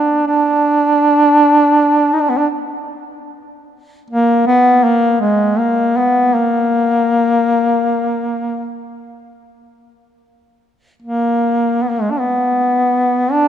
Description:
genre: caucasian folk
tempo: 52 BPM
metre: 3/4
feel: uneven beats, rubato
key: unclear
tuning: A4 = 440 Hz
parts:
  - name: warm duduk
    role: solo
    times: 0.0-13.5 s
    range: Ab3 to Eb4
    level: -12 LUFS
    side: equal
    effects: none
room: wet church reverb, RT60 3.4 s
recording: minimal, uncompressed stereo recording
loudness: -12 LUFS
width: side -9 dB against mid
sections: 0.0-9.9 A section; 9.9-13.5 A section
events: none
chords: none

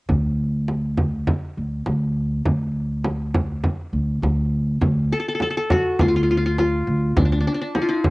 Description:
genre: Arabic maqam ensemble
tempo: 102 BPM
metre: 4/4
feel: straight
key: D maqam saba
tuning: A4 = 438 Hz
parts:
  - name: upright bass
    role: bass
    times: 0.1-7.4 s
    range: D2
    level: -21 LUFS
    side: equal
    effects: none
  - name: frame drum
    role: percussion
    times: 0.1-8.1 s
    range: none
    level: -22 LUFS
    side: right 1 dB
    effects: none
  - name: qanun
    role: melody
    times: 5.1-8.1 s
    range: D4 to A4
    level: -21 LUFS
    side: left 1 dB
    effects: cassette tape
room: light reverb, small room ambience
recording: home recording on cassette, nothing above 10.4 kHz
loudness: -19 LUFS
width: side -22 dB against mid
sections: 0.1-4.8 A section; 4.8-8.1 B section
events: none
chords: none

